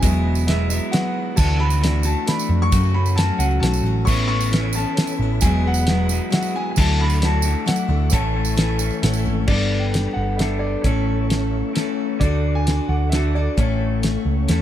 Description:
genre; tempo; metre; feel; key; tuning
folk rock and heartland rock; 133 BPM; 3/4; straight; A major; A4 = 439 Hz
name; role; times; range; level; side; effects
dark concert grand piano; melody; 0.0-14.0 s; C#5 to C#6; -28 LUFS; left 1 dB; none
picked steel-string acoustic guitar; accompaniment; 0.0-14.6 s; E2 to A4; -27 LUFS; left 3 dB; none
warm concert grand piano; accompaniment; 0.0-9.5 s; E4 to F#5; -36 LUFS; right 2 dB; none
electric guitar through a small old amp; riff; 0.0-14.6 s; E2 to A4; -25 LUFS; left 2 dB; lush chorus
hollow-body short-scale picked electric bass; bass; 0.0-14.6 s; E1 to F#2; -20 LUFS; right 1 dB; none
cloth-damped thuddy drum kit; drums; 0.0-14.6 s; crash cymbal, hi-hat, kick drum, snare drum; -21 LUFS; equal; none
tambourine; percussion; 0.0-9.3 s; none; -31 LUFS; right 9 dB; none
mellow tonewheel organ; sustained chords; 4.0-14.6 s; G#4 to D6; -36 LUFS; right 1 dB; slow rotary speaker, chorus vibrato
room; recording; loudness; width
little or no reverb; none; -17 LUFS; side -11 dB against mid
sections
0.0-9.5 A section; 9.5-14.6 B section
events
none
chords
0.0 Eadd9; 1.4 Dadd9; 2.7 F#m; 4.1 Aadd9; 5.4 Eadd9; 6.8 Dadd9; 8.1 A; 9.5 Gadd9; 10.8 A; 12.2 D; 13.6 A

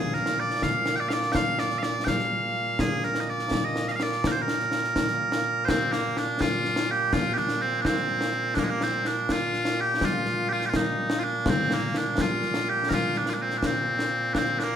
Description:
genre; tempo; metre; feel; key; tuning
scottish traditional, Scottish pipe music; 83 BPM (dotted quarters); 6/8; straight; Bb major; A4 = 439 Hz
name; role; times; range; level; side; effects
loud bright bagpipes; melody; 0.0-14.8 s; Bb2 to G5; -25 LUFS; right 1 dB; none
concert snare drum and concert bass drum; drums; 0.1-14.7 s; none; -28 LUFS; left 1 dB; none
room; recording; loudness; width
wet stone room reverb, RT60 1.3 s; band playing live in one room; -23 LUFS; side -9 dB against mid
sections
0.0-5.7 A section; 5.7-14.8 B section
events
none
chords
none

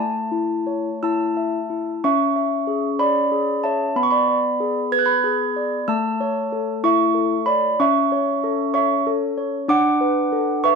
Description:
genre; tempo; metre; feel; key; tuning
classical, lullaby for handbells; 63 BPM (dotted quarters); 6/8; straight; A major; A4 = 445 Hz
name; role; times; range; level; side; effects
handbells; solo; 0.0-10.8 s; A3 to G#6; -18 LUFS; equal; none
room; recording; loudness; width
little or no reverb; dry, close 1970s-style studio recording; -18 LUFS; side -5 dB against mid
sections
0.0-2.0 A section; 2.0-10.8 B section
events
none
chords
0.0 A; 2.0 C#m; 4.0 Bm6; 5.9 A; 7.8 A/C#; 9.7 Bm7/D

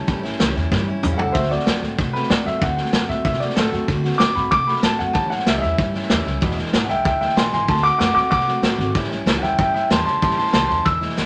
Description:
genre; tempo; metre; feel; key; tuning
rockabilly; 189 BPM; 4/4; straight; unclear; A4 = 438 Hz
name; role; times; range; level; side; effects
warm upright piano; melody; 0.0-11.3 s; F#4 to E6; -23 LUFS; equal; none
picked steel-string acoustic guitar; accompaniment; 0.0-11.3 s; E2 to F#4; -29 LUFS; equal; none
upright bass; bass; 0.0-11.3 s; E1 to C3; -29 LUFS; equal; none
vintage drum kit; drums; 0.1-11.2 s; hi-hat, kick drum, snare drum, toms; -24 LUFS; equal; none
room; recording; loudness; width
wet studio reverb, RT60 0.5 s; nothing above 10.7 kHz; -19 LUFS; mono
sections
0.0-11.3 A section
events
upright piano solo 0.0-11.3; drum fill 0.7-1.3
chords
0.0 A7; 1.3 D7; 5.2 A7; 6.4 E7; 7.7 D7; 8.9 A7

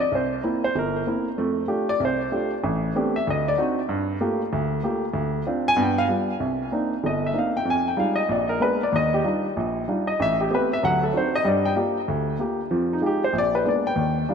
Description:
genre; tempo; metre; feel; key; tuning
jazz; 191 BPM; 4/4; swing 62% on 8ths; G minor, C minor from 6.4 s; A4 = 438 Hz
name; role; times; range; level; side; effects
warm baby grand piano; solo; 0.0-14.3 s; G1 to Ab5; -21 LUFS; equal; ping-pong delay
room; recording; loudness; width
wet plate reverb, RT60 3.3 s; dreamy mix soaked in reverb, faint mains hum; -21 LUFS; side -6 dB against mid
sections
0.0-6.4 A section; 6.4-14.3 A section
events
grand piano solo 0.0-14.3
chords
0.1 C7; 1.4 F69; 2.6 Am11; 3.3 D7b9; 3.9 Gm9; 5.1 Dm7b5; 5.8 G7; 6.4 Cm9; 7.7 Fm9; 8.3 Bb7b9; 8.9 Ebmaj9; 10.2 Am9; 10.8 D7b9; 11.4 Gm7; 12.7 Fm9; 13.3 Bb7b9

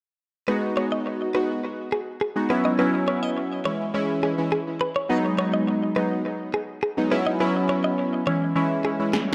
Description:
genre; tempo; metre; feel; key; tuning
afrobeats; 104 BPM; 4/4; straight; G# minor; A4 = 442 Hz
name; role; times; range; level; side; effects
warm analog keys; accompaniment; 0.5-9.1 s; E3 to F#4; -26 LUFS; equal; chorus, phaser, tape echo
direct-recorded clean electric guitar; riff; 0.5-9.2 s; G#4 to D#5; -30 LUFS; equal; tape echo
electronic snare drum; drums; 9.1-9.3 s; none; -24 LUFS; equal; overdrive
room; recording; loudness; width
light reverb; echo-heavy mix; -24 LUFS; mono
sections
0.5-9.3 A section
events
drum fill 9.1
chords
0.5 G#m7; 2.5 F#7sus4; 3.7 C#m; 5.1 G#m7; 7.1 F#7sus4; 8.3 C#m

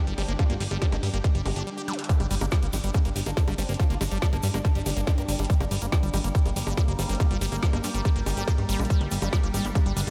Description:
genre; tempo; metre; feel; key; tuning
psychedelic trance; 141 BPM; 4/4; straight; G minor; A4 = 441 Hz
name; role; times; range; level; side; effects
overtone-sweeping drone; sustained chords; 0.0-10.1 s; G3 to D4; -39 LUFS; equal; chorus, built-in reverb, sidechain pumping
granular cloud pad; texture; 0.0-1.7 s; D4 to D6; -44 LUFS; equal; none
liquid acid bass; riff; 0.1-10.1 s; G3 to G4; -36 LUFS; equal; phaser, sidechain pumping, tape echo
plucky analog bass; bass; 0.1-10.1 s; G1 to G2; -30 LUFS; equal; none
drum and bass drum kit; drums; 0.1-10.1 s; bongos, hi-hat, snare drum; -36 LUFS; equal; none
formant-sweep wobble bass; second line; 0.2-8.4 s; C4 to G4; -45 LUFS; equal; none
electronic kick drum; drums; 0.4-9.8 s; none; -25 LUFS; equal; none
zap; sound effects; 1.9-2.0 s; none; -45 LUFS; equal; none
egg shaker; percussion; 2.1-10.1 s; none; -44 LUFS; equal; none
room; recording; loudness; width
light reverb; none; -26 LUFS; mono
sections
0.0-2.1 A section; 2.1-10.1 B section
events
break 1.7-2.1; drum fill 1.9; drop 2.1-10.1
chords
0.0 G5

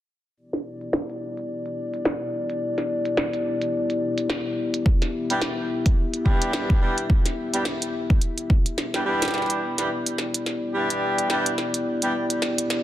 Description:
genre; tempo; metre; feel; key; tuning
glitch hop; 107 BPM; 4/4; swing 58% on 16ths; E minor pentatonic; A4 = 440 Hz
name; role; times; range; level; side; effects
dark analog pad; sustained chords; 0.4-12.8 s; B3 to E5; -27 LUFS; left 2 dB; chorus, sidechain pumping
glitchy drum kit; drums; 0.5-12.8 s; hi-hat, snare drum; -27 LUFS; equal; overdrive, high-pass filter on snare, low-pass filter on snare, high-pass filter on hats, low-pass filter on hats, high-pass filter on room, low-pass filter on room
electronic kick drum; drums; 4.9-8.6 s; none; -19 LUFS; equal; overdrive
dark horn section; stabs; 5.3-12.1 s; G3 to G4; -26 LUFS; equal; sidechain pumping, tape echo
room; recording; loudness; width
light reverb, digital ambience; dense, heavily limited modern master; -22 LUFS; side -13 dB against mid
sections
0.4-9.3 A section; 9.3-12.8 B section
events
filter sweep on drum 0.4-9.3; drum fill 8.8-9.3, 9.3-12.8; build-up 9.3-12.8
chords
0.4 Em7

